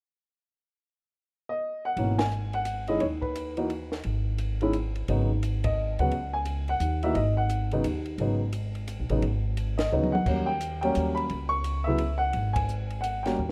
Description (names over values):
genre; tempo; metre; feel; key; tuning
jazz piano trio; 174 BPM; 3/4; swing 63% on 8ths; G# minor; A4 = 440 Hz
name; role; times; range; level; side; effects
warm baby grand piano; melody; 1.5-13.5 s; B2 to C#6; -30 LUFS; equal; none
upright bass; bass; 2.0-13.5 s; G#1 to D#2; -31 LUFS; equal; none
compact cocktail drum kit; drums; 2.0-13.5 s; crash cymbal, hi-hat, kick drum, ride cymbal, snare drum, toms; -39 LUFS; equal; none
room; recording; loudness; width
small room ambience; rough home demo mix; -28 LUFS; mono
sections
0.9-2.0 A section; 2.0-13.5 B section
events
band accent 2.1, 5.6, 9.7, 12.5; drum fill 9.9-10.3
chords
0.9 N.C.; 2.0 G#m7; 6.1 C#m; 7.2 G#7(no3); 10.3 D#7#9; 11.3 C#m7; 12.3 G#7(no3)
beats
| 0.94 1.29 1.63 | 1.98 2.32 2.67 | 3.01 3.35 3.70 | 4.04 4.39 4.74 | 5.08 5.43 5.77 | 6.12 6.46 6.81 | 7.15 7.50 7.85 | 8.19 8.54 8.88 | 9.23 9.58 9.92 | 10.27 10.61 10.96 | 11.31 11.65 12.00 | 12.35 12.69 13.04 | 13.38